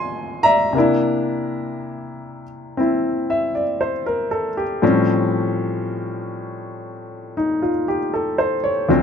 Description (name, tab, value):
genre	solo jazz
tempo	59 BPM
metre	4/4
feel	swing 67% on 8ths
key	unclear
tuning	A4 = 442 Hz
part	clear baby grand piano	solo	0.0-9.0 s	D2 to C6	-18 LUFS	left 1 dB	none
room	light reverb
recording	close, detailed microphones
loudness	-18 LUFS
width	side -7 dB against mid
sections	0.0-9.0 A section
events	none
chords	0.0 Fm7; 0.8 C9; 4.8 A7alt